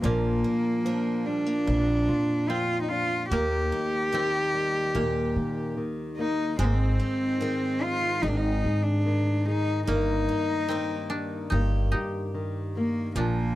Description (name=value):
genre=acoustic folk duo or small band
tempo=73 BPM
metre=4/4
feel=straight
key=Eb major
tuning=A4 = 439 Hz
part: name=warm cello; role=melody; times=0.0-13.6 s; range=Bb3 to G4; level=-27 LUFS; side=equal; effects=none
part: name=koto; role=second line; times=0.0-13.6 s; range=Ab3 to Eb4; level=-34 LUFS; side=right 1 dB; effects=none
part: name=nylon-string guitar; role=accompaniment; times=0.0-13.6 s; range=Eb2 to Ab4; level=-32 LUFS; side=left 2 dB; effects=none
part: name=picked steel-string acoustic guitar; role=arpeggios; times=0.0-13.6 s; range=F3 to Ab4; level=-36 LUFS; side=right 3 dB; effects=none
part: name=upright bass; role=bass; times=0.0-13.5 s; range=G1 to Eb3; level=-28 LUFS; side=equal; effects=none
room=light reverb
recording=dry, close 1970s-style studio recording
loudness=-24 LUFS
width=side -15 dB against mid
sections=0.0-13.6 A section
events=none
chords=0.0 Bb; 3.3 Eb; 6.6 Ab; 9.9 Eb/G